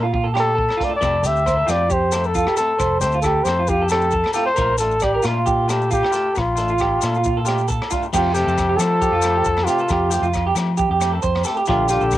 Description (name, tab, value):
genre	highlife guitar band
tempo	135 BPM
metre	4/4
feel	straight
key	F major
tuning	A4 = 440 Hz
part	breathy trumpet	melody	0.0-12.2 s	F4 to E5	-20 LUFS	left 1 dB	cassette tape
part	clean electric guitar	accompaniment	0.0-12.0 s	F3 to G4	-29 LUFS	left 6 dB	none
part	electric guitar through a small old amp	arpeggios	0.0-12.2 s	F4 to D5	-22 LUFS	right 6 dB	wide subtle chorus
part	fingered electric bass	bass	0.0-12.2 s	F1 to F3	-23 LUFS	equal	none
part	crunchy breakbeat drum kit	drums	0.1-12.2 s	crash cymbal, hi-hat, kick drum, rim click	-28 LUFS	equal	cassette tape
part	agogo bells	percussion	0.3-12.2 s	none	-33 LUFS	left 11 dB	none
part	maracas	percussion	1.0-12.2 s	none	-31 LUFS	left 10 dB	none
part	clear trombone	second line	8.1-12.2 s	C3 to F3	-28 LUFS	left 6 dB	none
room	light reverb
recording	home recording on cassette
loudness	-16 LUFS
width	side -14 dB against mid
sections	0.0-8.1 A section; 8.1-12.2 B section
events	none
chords	0.0 Bbmaj7; 1.0 Fadd9; 4.6 Bbmaj7; 8.1 Fadd9; 11.7 Bbmaj7